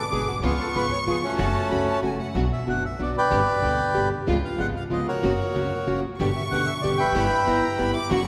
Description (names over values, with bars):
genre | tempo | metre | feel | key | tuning
tango | 188 BPM | 3/4 | rubato | B harmonic minor | A4 = 440 Hz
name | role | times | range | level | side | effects
bandoneon | melody | 0.0-7.9 s | A3 to G5 | -28 LUFS | equal | none
warm chamber violin section | second line | 0.0-2.3, 6.2-8.3 s | F#5 to D6 | -33 LUFS | equal | none
nylon-string guitar | accompaniment | 0.1-8.2 s | B2 to G#4 | -29 LUFS | equal | none
warm symphonic string section | stabs | 0.1-8.2 s | A3 to G#4 | -37 LUFS | equal | none
upright bass | bass | 0.1-8.2 s | E1 to D2 | -32 LUFS | equal | none
room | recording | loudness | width
wet church reverb, RT60 3.4 s | recorded in a church or concert hall | -24 LUFS | mono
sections
0.0-2.4 A section; 2.4-8.3 B section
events
none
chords
0.4 C#7; 1.4 F#m; 2.4 Bm; 3.3 G; 4.3 C#7; 5.2 F#; 6.2 G; 7.2 Em/G